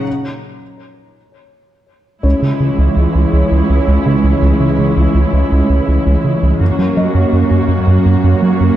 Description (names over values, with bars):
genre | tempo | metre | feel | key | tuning
cinematic | 55 BPM (dotted quarters) | 6/8 | straight | C# dorian | A4 = 441 Hz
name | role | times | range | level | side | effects
warm analog pad | sustained chords | 0.0-8.8 s | E3 to C#5 | -17 LUFS | left 1 dB | chorus
clear symphonic cello section | bass | 0.0-8.8 s | C#2 to F#2 | -19 LUFS | right 2 dB | none
felt-muted upright piano | texture | 0.0-8.8 s | C#4 to D#5 | -26 LUFS | left 2 dB | tape echo
rich studio viola section | accompaniment | 2.2-8.8 s | G#3 to F#4 | -21 LUFS | right 2 dB | none
rubbery square bass | riff | 2.2-8.7 s | C#2 to F#3 | -13 LUFS | right 1 dB | none
room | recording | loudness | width
moderate scoring stage reverb, RT60 1.4 s | dark, warm production | -10 LUFS | side -12 dB against mid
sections
0.0-2.2 A section; 2.2-8.8 B section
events
break 0.1-2.2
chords
0.1 N.C.; 2.2 C#m; 6.6 F#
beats
| 0.06 1.15 | 2.24 3.33 | 4.42 5.51 | 6.61 7.70